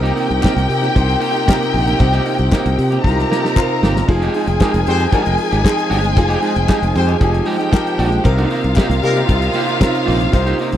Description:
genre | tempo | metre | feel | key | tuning
disco | 115 BPM | 4/4 | straight | F minor | A4 = 440 Hz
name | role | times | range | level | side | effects
warm studio string section | second line | 0.0-10.8 s | F4 to Bb5 | -20 LUFS | left 1 dB | none
bright grand piano | accompaniment | 0.0-10.8 s | C3 to C5 | -21 LUFS | equal | none
electric guitar at the edge of break-up | accompaniment | 0.0-10.8 s | Ab3 to Bb4 | -24 LUFS | right 5 dB | vibrato effect
dark French horn section | sustained chords | 0.0-10.8 s | C3 to C5 | -25 LUFS | left 2 dB | none
modern bright fingered electric bass | bass | 0.0-10.8 s | F1 to C3 | -17 LUFS | equal | none
warm soul drum kit | drums | 0.1-10.8 s | crash cymbal, hi-hat, kick drum, snare drum | -15 LUFS | equal | none
group handclap | percussion | 0.4-9.9 s | none | -31 LUFS | left 8 dB | none
mellow horn section | stabs | 4.9-9.2 s | G3 to C5 | -20 LUFS | left 3 dB | none
room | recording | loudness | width
small room ambience | dry, close 1970s-style studio recording | -13 LUFS | side -11 dB against mid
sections
0.0-10.8 A section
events
drum fill 3.0-4.1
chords
0.0 Cm7; 4.1 Fm9; 8.3 Cm7

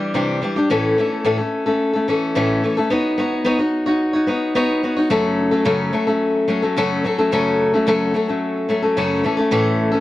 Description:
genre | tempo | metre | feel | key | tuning
rock | 109 BPM | 4/4 | straight | unclear | A4 = 440 Hz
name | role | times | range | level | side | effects
picked steel-string acoustic guitar | solo | 0.0-10.0 s | F#2 to C#5 | -16 LUFS | left 1 dB | tape echo
room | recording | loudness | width
light reverb | dry, close 1970s-style studio recording | -16 LUFS | side -15 dB against mid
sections
0.0-5.1 A section; 5.1-10.0 B section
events
none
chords
0.0 Cadd9; 0.7 A; 2.9 Badd9; 5.1 F#m; 9.2 A

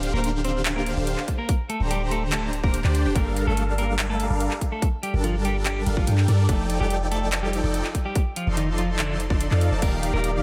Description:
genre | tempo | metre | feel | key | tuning
future bass | 144 BPM | 4/4 | half-time | Bb major | A4 = 440 Hz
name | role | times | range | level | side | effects
supersaw chords | riff | 0.0-10.4 s | D3 to C6 | -30 LUFS | equal | phaser, sidechain pumping
warm 808-style bass | bass | 0.0-10.4 s | D1 to G2 | -27 LUFS | equal | sidechain pumping
big-room dance drum kit | drums | 0.0-10.3 s | crash cymbal, handclaps, hi-hat | -33 LUFS | equal | none
clean electric guitar | melody | 0.1-10.3 s | D3 to C5 | -32 LUFS | equal | sidechain pumping, tape echo
electronic kick drum | drums | 1.3-9.9 s | none | -26 LUFS | equal | none
airy breathy pad | sustained chords | 10.0-10.4 s | F3 to D5 | -34 LUFS | equal | chorus, sidechain pumping
room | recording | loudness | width
moderate plate reverb, RT60 1.2 s | dreamy mix soaked in reverb | -24 LUFS | mono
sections
0.0-9.8 A section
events
drop 0.0-9.8; kick drops out 9.4-9.8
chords
0.0 Bb69/D; 3.2 Gm7; 6.5 F13; 9.8 Ebmaj9

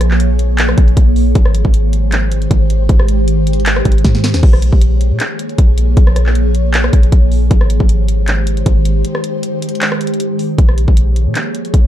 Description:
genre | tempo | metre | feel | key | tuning
hip hop, trap | 156 BPM | 4/4 | half-time | Bb dorian | A4 = 442 Hz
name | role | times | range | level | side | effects
ethereal airy pad | sustained chords | 0.0-11.9 s | Eb3 to Db5 | -18 LUFS | right 1 dB | ensemble chorus, built-in reverb
clean 808-style bass | bass | 0.0-11.9 s | Ab1 to Bb2 | -12 LUFS | equal | none
trap drum kit | drums | 0.0-11.8 s | crash cymbal, handclaps, hi-hat, kick drum, rim click, snare drum | -13 LUFS | equal | none
room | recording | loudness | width
little or no reverb | dark, warm production | -10 LUFS | side -12 dB against mid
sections
0.0-10.6 A section; 10.6-11.9 B section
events
drum fill 4.0-4.4; break 9.0-10.6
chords
0.0 Bbm7; 1.4 Abmaj7; 4.4 Bbm7; 7.5 Abmaj7; 10.6 Bbm7

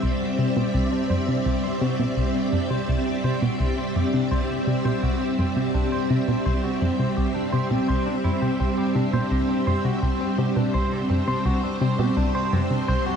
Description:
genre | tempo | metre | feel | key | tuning
ambient, sequencer-driven space music | 84 BPM | 4/4 | straight | C lydian | A4 = 440 Hz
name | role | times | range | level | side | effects
string machine, full ensemble | sustained chords | 0.0-13.2 s | G3 to E5 | -24 LUFS | equal | ensemble chorus
clean electric guitar | arpeggios | 0.0-13.2 s | C3 to C5 | -31 LUFS | right 1 dB | auto-pan, ping-pong delay
analog pluck | riff | 0.0-13.0 s | C2 to C3 | -24 LUFS | equal | chorus, ping-pong delay
pulsing gated texture | texture | 2.5-13.2 s | C4 to C5 | -36 LUFS | left 2 dB | none
room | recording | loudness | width
moderate huge ambient reverb, RT60 8.8 s | dark, warm production | -21 LUFS | side -7 dB against mid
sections
0.0-13.2 A section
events
fade-in on clean electric guitar 0.0-13.2; filter sweep on synth arpeggio sound 0.0-13.2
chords
0.0 Cadd9

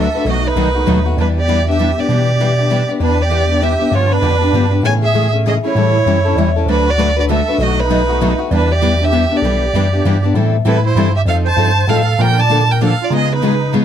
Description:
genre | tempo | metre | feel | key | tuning
acoustic string swing (jazz manouche) | 196 BPM | 3/4 | swing 60% on 8ths | E minor | A4 = 438 Hz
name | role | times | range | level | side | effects
warm violin | melody | 0.0-13.8 s | B4 to A5 | -18 LUFS | right 2 dB | none
musette accordion | second line | 0.0-13.8 s | D4 to D5 | -23 LUFS | right 12 dB | none
picked steel-string acoustic guitar | accompaniment | 0.0-13.8 s | B2 to B4 | -18 LUFS | left 7 dB | none
picked steel-string acoustic guitar | accompaniment | 0.0-2.8, 6.7-13.8 s | B2 to B4 | -22 LUFS | right 5 dB | none
bell-like tine electric piano | bass | 0.0-13.8 s | B1 to C#3 | -16 LUFS | equal | medium stereo tremolo
room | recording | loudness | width
little or no reverb | close, detailed microphones | -12 LUFS | side -9 dB against mid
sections
0.0-3.0 A section; 3.0-10.4 A section; 10.4-13.8 B section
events
none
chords
0.3 B7; 1.2 Em7; 3.9 G7; 4.8 Amaj7; 5.8 A7; 6.7 D6; 7.6 B7; 8.5 Em7; 10.4 Am7; 11.3 F7; 12.2 Bbmaj7; 13.1 C#9

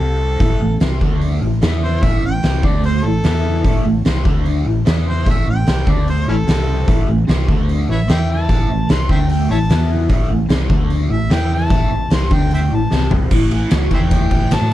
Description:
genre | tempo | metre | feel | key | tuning
blues rock power trio and southern rock | 149 BPM | 4/4 | straight | unclear | A4 = 439 Hz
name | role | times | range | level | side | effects
warm harmonica | melody | 0.0-14.7 s | C#4 to C6 | -24 LUFS | left 1 dB | overdrive, slapback echo
overdriven electric guitar | riff | 0.0-14.7 s | A2 to E4 | -21 LUFS | equal | phaser
hollow-body short-scale fingered electric bass | bass | 0.0-14.7 s | A1 to A2 | -18 LUFS | equal | none
oversized low-tuned drum kit | drums | 0.4-14.7 s | crash cymbal, hi-hat, kick drum, ride cymbal, snare drum, toms | -18 LUFS | equal | none
room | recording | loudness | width
small room ambience | none | -14 LUFS | side -14 dB against mid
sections
0.0-13.3 A section; 13.3-14.7 B section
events
drum fill 12.9-13.3; harmonica solo 13.3-14.7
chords
0.0 C5; 0.4 A5; 1.0 D5; 1.4 A5; 1.6 E5; 2.0 A5; 2.6 D5; 3.0 A5; 3.2 E5; 3.6 A5; 4.2 D5; 4.7 A5; 4.9 E5; 5.3 A5; 5.9 D5; 6.3 A5; 6.5 C5; 6.9 A5; 7.5 D5; 7.9 A5; 8.1 E5; 8.5 A5; 9.1 D5; 9.5 A5; 9.7 E5; 10.1 A5; 10.7 D5; 11.1 A5; 11.3 E5; 11.7 A5; 12.3 D5; 12.7 A5; 12.9 C5; 13.3 A5

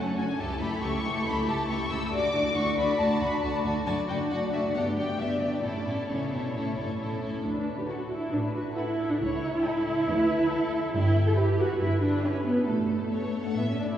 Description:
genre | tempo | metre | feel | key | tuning
quick classical-period movement for string orchestra | 137 BPM | 4/4 | rubato | D major | A4 = 440 Hz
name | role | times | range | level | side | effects
rich symphonic violin section | melody | 0.0-14.0 s | G4 to E6 | -34 LUFS | left 2 dB | none
clear symphonic violin section | second line | 0.0-14.0 s | C#4 to G5 | -32 LUFS | left 3 dB | none
warm chamber viola section | accompaniment | 0.0-14.0 s | A3 to A4 | -28 LUFS | right 1 dB | none
clear symphonic cello section | bass | 0.0-13.9 s | C#2 to C#3 | -34 LUFS | right 1 dB | none
clear symphonic double bass section | bass | 0.0-13.9 s | F#1 to D2 | -35 LUFS | right 1 dB | none
room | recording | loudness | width
wet cathedral reverb, RT60 4.3 s | heard from further back in the room, small room ambience | -25 LUFS | side -10 dB against mid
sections
0.0-7.4 A section; 7.4-14.0 B section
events
none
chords
0.4 A7/C#; 2.1 D; 3.9 D/F#; 4.7 G; 5.6 A; 7.4 D; 9.2 A7/C#; 10.1 D; 10.9 Gmaj13; 12.7 A

